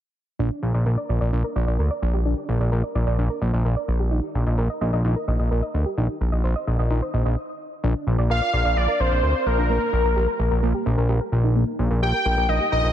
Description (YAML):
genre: synth-pop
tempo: 129 BPM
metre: 4/4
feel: straight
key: Bb major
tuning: A4 = 440 Hz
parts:
  - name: soft round pluck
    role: arpeggios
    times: 0.4-12.9 s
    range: Bb3 to Eb5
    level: -28 LUFS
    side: right 1 dB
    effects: chorus, ping-pong delay
  - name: fat analog bass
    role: bass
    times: 0.4-12.9 s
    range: Bb1 to D2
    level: -20 LUFS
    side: equal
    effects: none
  - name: wide unison lead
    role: melody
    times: 8.3-12.9 s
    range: Bb4 to G5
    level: -23 LUFS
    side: equal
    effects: ping-pong delay
room: moderate lush hall reverb, RT60 2.7 s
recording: dreamy mix soaked in reverb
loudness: -20 LUFS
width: side -11 dB against mid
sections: 0.4-7.8 A section; 7.8-12.9 B section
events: stop 7.4-7.8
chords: 0.4 Bb; 2.0 Gm/Bb; 3.9 Eb/Bb; 6.0 Bbsus24; 7.8 Bb; 9.5 Gm/Bb; 11.3 Eb/Bb